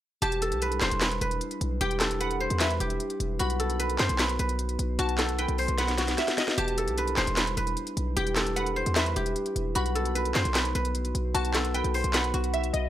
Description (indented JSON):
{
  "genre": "hip hop, trap",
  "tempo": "151 BPM",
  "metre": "4/4",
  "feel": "half-time",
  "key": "E minor",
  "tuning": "A4 = 441 Hz",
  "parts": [
    { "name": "guzheng", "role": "melody", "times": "0.2-12.9 s", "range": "F#4 to C5", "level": "-29 LUFS", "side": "equal", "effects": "analog delay" },
    { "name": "glassy wavetable pluck", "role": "second line", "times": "0.2-12.9 s", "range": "D#5 to B5", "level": "-35 LUFS", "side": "equal", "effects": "chorus, analog delay" },
    { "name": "glass harmonica", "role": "sustained chords", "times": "0.2-12.9 s", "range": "G3 to B4", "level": "-36 LUFS", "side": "equal", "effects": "none" },
    { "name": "hard-hitting 808-style bass", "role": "bass", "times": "0.2-12.9 s", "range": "E1 to F#2", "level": "-30 LUFS", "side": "equal", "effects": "none" },
    { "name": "trap drum kit", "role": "drums", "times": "0.2-12.8 s", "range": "handclaps, hi-hat, snare drum", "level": "-29 LUFS", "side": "equal", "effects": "none" }
  ],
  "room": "small room ambience",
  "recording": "dry, gritty hardware recording",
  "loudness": "-25 LUFS",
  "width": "side -12 dB against mid",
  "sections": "0.2-12.9 A section",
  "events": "drum fill 5.8-6.6",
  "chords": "0.2 Em7; 3.4 B; 6.6 Em7; 9.8 B"
}